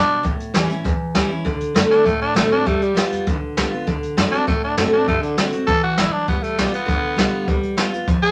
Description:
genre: rockabilly.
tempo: 199 BPM.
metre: 4/4.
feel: straight.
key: D mixolydian.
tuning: A4 = 441 Hz.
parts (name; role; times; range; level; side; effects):
growling tenor saxophone; melody; 0.0-8.3 s; D3 to A4; -23 LUFS; equal; none.
picked steel-string acoustic guitar; accompaniment; 0.0-8.3 s; E2 to F#4; -23 LUFS; equal; none.
upright bass; bass; 0.0-8.3 s; G1 to C3; -31 LUFS; equal; none.
jazz brush drum kit; drums; 0.2-8.1 s; hi-hat, kick drum, snare drum; -24 LUFS; equal; none.
room: moderate studio reverb, RT60 0.6 s.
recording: none.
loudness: -19 LUFS.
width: mono.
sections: 0.0-1.5 A section; 1.5-8.3 A section.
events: none.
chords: 0.2 A7; 1.5 D7; 2.7 G7; 3.9 D7; 6.3 G7.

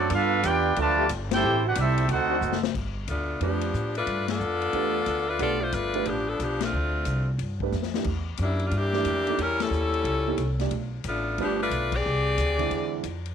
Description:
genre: jazz, big band swing.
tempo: 181 BPM.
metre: 4/4.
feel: swing 65% on 8ths.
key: G mixolydian.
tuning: A4 = 440 Hz.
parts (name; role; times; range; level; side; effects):
clear trumpet section; melody; 0.0-2.6 s; C4 to A5; -24 LUFS; equal; none.
bright trombone section; second line; 0.0-2.6 s; D3 to G4; -28 LUFS; right 14 dB; none.
upright bass; bass; 0.0-13.3 s; F#1 to A2; -29 LUFS; equal; none.
swinging big-band drum kit; drums; 0.1-13.3 s; crash cymbal, hi-hat, kick drum, ride cymbal, snare drum; -35 LUFS; left 8 dB; none.
clear trombone section; sustained chords; 1.0-2.4 s; Eb3 to G4; -32 LUFS; left 13 dB; none.
edgy saxophone section; melody; 3.1-13.1 s; E3 to D5; -26 LUFS; left 2 dB; none.
warm upright piano; accompaniment; 3.4-13.0 s; D3 to D5; -31 LUFS; right 15 dB; none.
room: light reverb, small room ambience.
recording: 1960s-style stereo with parts hard left and right.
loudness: -23 LUFS.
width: side -8 dB against mid.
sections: 0.0-2.8 A section; 2.8-13.3 B section.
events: band accent 1.3, 4.2, 6.6, 9.6, 11.9; drum fill 2.4-2.8, 7.7-8.1.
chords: 0.1 G9; 1.4 Am7; 2.1 D7b9; 2.8 G9; 6.7 Dm7; 7.4 G9; 8.1 Em9b5; 9.4 C#dim; 10.7 G9; 12.0 E7alt.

